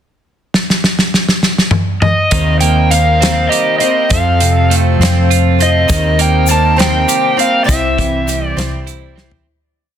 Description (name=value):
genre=folk rock and heartland rock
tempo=67 BPM (dotted quarters)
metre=6/8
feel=straight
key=unclear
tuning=A4 = 440 Hz
part: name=loose indie drum kit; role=drums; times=0.5-9.5 s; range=hi-hat, kick drum, snare drum, toms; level=-14 LUFS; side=equal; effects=none
part: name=overdriven slide guitar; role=melody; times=2.0-8.8 s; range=Eb5 to A5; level=-15 LUFS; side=equal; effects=none
part: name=picked steel-string acoustic guitar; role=accompaniment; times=2.3-9.5 s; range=C3 to C5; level=-20 LUFS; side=left 9 dB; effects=none
part: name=accordion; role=sustained chords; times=2.3-9.4 s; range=E3 to Bb4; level=-26 LUFS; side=equal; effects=none
part: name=twelve-string electric guitar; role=riff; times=2.3-9.5 s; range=F2 to G4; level=-18 LUFS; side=right 11 dB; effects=none
part: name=hollow-body short-scale fingered electric bass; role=bass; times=2.3-9.4 s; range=C2 to F2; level=-14 LUFS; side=equal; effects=none
part: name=tube shaker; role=percussion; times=5.9-9.0 s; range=none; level=-24 LUFS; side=left 16 dB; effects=none
room=light reverb, studio reverb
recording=dense, heavily limited modern master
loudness=-10 LUFS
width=side -9 dB against mid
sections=0.5-2.3 pickup bar; 2.3-9.5 pre-chorus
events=drum fill 0.5-2.3, 9.2; fade-out 7.7-9.5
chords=0.5 N.C.; 2.3 Eb6; 4.1 F; 5.9 Eb6; 7.7 C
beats=| 0.53 1.43 | 2.32 3.21 | 4.11 5.00 | 5.89 6.79 | 7.68 8.57